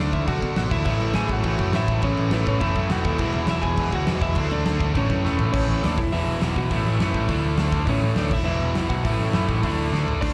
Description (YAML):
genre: punk rock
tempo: 205 BPM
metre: 4/4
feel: straight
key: A major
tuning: A4 = 443 Hz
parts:
  - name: lightly driven lead guitar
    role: melody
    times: 0.0-10.3 s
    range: B3 to G#5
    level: -30 LUFS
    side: equal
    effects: slapback echo
  - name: overdriven semi-hollow guitar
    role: riff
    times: 0.0-10.3 s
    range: E2 to D4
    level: -30 LUFS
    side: equal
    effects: slapback echo
  - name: picked electric bass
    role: bass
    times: 0.0-10.3 s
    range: E1 to B2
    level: -27 LUFS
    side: equal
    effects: none
  - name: big rock drum kit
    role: drums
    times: 0.1-10.3 s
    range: crash cymbal, hi-hat, kick drum, snare drum, toms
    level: -29 LUFS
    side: equal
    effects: none
  - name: overdriven electric guitar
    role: riff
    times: 0.9-10.3 s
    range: E2 to D4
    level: -34 LUFS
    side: equal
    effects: slapback echo
room: small room ambience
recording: live gig heard through the venue's PA, recital hall reverb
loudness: -23 LUFS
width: mono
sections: 0.0-5.5 A section; 5.5-10.2 B section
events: drum fill 5.2, 9.9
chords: 0.0 D; 0.9 A; 3.2 E; 4.4 D5; 5.0 A; 6.0 E5; 6.7 A5; 7.3 D5; 7.9 A; 8.3 E5; 9.0 A5; 9.6 D5